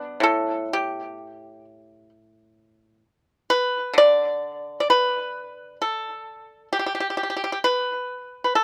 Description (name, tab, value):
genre	chinese traditional, Chinese solo plucked strings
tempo	65 BPM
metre	4/4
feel	rubato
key	unclear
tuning	A4 = 440 Hz
part	pipa	solo	0.0-8.6 s	A2 to D5	-23 LUFS	equal	slapback echo
room	little or no reverb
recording	recorded outdoors, with no room sound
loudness	-23 LUFS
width	mono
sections	0.0-8.6 A section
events	none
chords	none